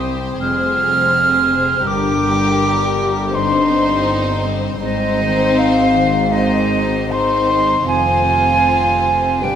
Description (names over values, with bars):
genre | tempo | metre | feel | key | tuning
cinematic, emotional film score for orchestra | 74-84 BPM | 4/4 | rubato | unclear | A4 = 440 Hz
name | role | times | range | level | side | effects
warm symphonic violin section | melody | 0.0-9.6 s | Bb4 to C5 | -25 LUFS | left 6 dB | none
rich chamber violin section | second line | 0.0-9.6 s | D4 to Ab4 | -25 LUFS | left 2 dB | none
silver concert flute | second line | 0.0-9.6 s | Eb5 to F6 | -17 LUFS | right 1 dB | none
dark symphonic viola section | accompaniment | 0.0-9.6 s | G3 to C4 | -22 LUFS | right 2 dB | none
concert harp | arpeggios | 0.0-9.6 s | F2 to C4 | -24 LUFS | left 6 dB | none
clear studio cello section | bass | 0.0-9.6 s | C2 to Ab2 | -24 LUFS | right 3 dB | none
rich studio double bass section | bass | 0.0-9.6 s | F1 to C2 | -25 LUFS | right 2 dB | none
room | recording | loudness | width
wet scoring stage reverb, RT60 1.7 s | none | -13 LUFS | side -9 dB against mid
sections
0.0-9.6 A section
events
none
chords
0.4 Fm; 1.9 Gm; 3.3 Cm/G; 4.8 Ab; 7.9 Fm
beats
0.41 1.13 | 1.87 2.60 3.34 4.08 | 4.83 5.58 6.32 7.11 | 7.87 8.64 9.43